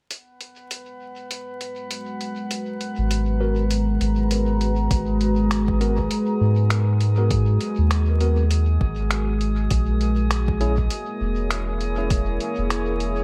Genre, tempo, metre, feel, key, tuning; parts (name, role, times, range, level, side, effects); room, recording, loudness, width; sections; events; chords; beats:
ambient dub; 100 BPM; 4/4; swing 58% on 16ths; G# minor; A4 = 444 Hz
deep dark ambient pad; sustained chords; 2.0-13.2 s; G#3 to A#5; -28 LUFS; equal; chorus, built-in reverb
lo-fi sampler-style drum kit; drums; 0.1-13.1 s; finger snaps, hi-hat; -33 LUFS; equal; small room ambience, dub echo
drifting glass-harmonics texture; texture; 0.3-13.2 s; G#3 to B4; -36 LUFS; equal; chorus, built-in reverb
soft dub sub bass; bass; 3.0-13.2 s; E1 to G#2; -23 LUFS; equal
tine electric piano; stabs; 3.4-12.1 s; B3 to A#4; -34 LUFS; equal; overdrive, dub echo
electronic kick drum; drums; 4.9-12.2 s; -27 LUFS; equal; overdrive, small room ambience
light reverb; echo-heavy mix, vinyl crackle; -22 LUFS; mono
0.1-4.9 A section; 4.9-13.2 B section
filter sweep on ambient pad 0.1-4.9
0.1 G#m9; 9.7 A#m7b5
| 0.11 0.71 1.31 1.91 | 2.51 3.11 3.71 4.31 | 4.91 5.51 6.11 6.71 | 7.31 7.91 8.51 9.11 | 9.71 10.31 10.91 11.51 | 12.11 12.71